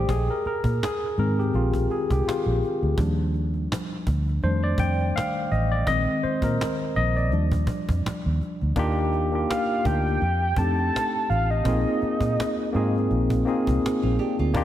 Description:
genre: R&B, neo-soul.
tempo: 83 BPM.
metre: 4/4.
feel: swing 56% on 16ths.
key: unclear.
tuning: A4 = 441 Hz.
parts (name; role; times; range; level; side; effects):
tine electric piano; accompaniment; 0.0-14.6 s; Eb3 to G5; -25 LUFS; left 1 dB; medium stereo tremolo.
vintage muted fingered electric bass; bass; 0.0-14.6 s; A1 to Bb2; -24 LUFS; equal; none.
cajon; drums; 0.1-14.6 s; none; -31 LUFS; equal; none.
soft octave-layered synth lead; melody; 9.5-12.9 s; Eb5 to A5; -27 LUFS; right 1 dB; chorus.
nylon-string guitar; second line; 14.0-14.6 s; C4 to G4; -30 LUFS; right 8 dB; slapback echo.
room: moderate lush hall reverb, RT60 2.1 s.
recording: big arena sound.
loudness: -22 LUFS.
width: side -12 dB against mid.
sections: 0.0-8.8 A section; 8.8-14.6 B section.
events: tine electric piano solo 0.0-8.8.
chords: 0.1 Bb7sus4; 3.0 Ebmaj7; 4.4 F13; 5.9 Bb7sus4; 7.3 Ebmaj9; 8.8 Ebmaj7; 10.2 F13; 11.7 Bb7sus4.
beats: | 0.09 0.81 1.53 2.26 | 2.98 3.70 4.42 5.15 | 5.87 6.59 7.32 8.04 | 8.76 9.48 10.21 10.93 | 11.65 12.38 13.10 13.82 | 14.54.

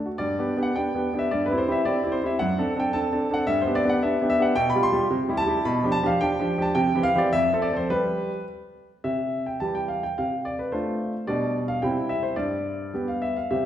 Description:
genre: classical-period piano sonatina.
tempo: 109 BPM.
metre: 2/4.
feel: straight.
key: G major, C major from 4.6 s.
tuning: A4 = 440 Hz.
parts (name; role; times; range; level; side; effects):
clear grand piano; solo; 0.0-13.7 s; F2 to C6; -22 LUFS; equal; none.
room: wet recital hall reverb, RT60 1.5 s.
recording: heard from further back in the room.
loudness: -22 LUFS.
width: side -10 dB against mid.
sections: 0.2-9.0 A section; 9.0-13.7 B section.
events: none.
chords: 0.2 G; 1.3 C/G; 2.4 D7/F#; 3.5 G; 4.6 G7/B; 5.1 C; 5.7 G7/B; 6.8 C; 7.3 F; 7.9 N.C.; 9.0 C; 10.2 Dm7/C; 11.3 G/B; 11.8 C; 12.4 G.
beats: | 0.19 0.75 | 1.30 1.84 | 2.39 2.94 | 3.48 4.02 | 4.56 5.11 | 5.66 6.20 | 6.75 7.32 | 7.89 8.47 | 9.04 9.60 | 10.16 10.72 | 11.27 11.82 | 12.38 12.94 | 13.51.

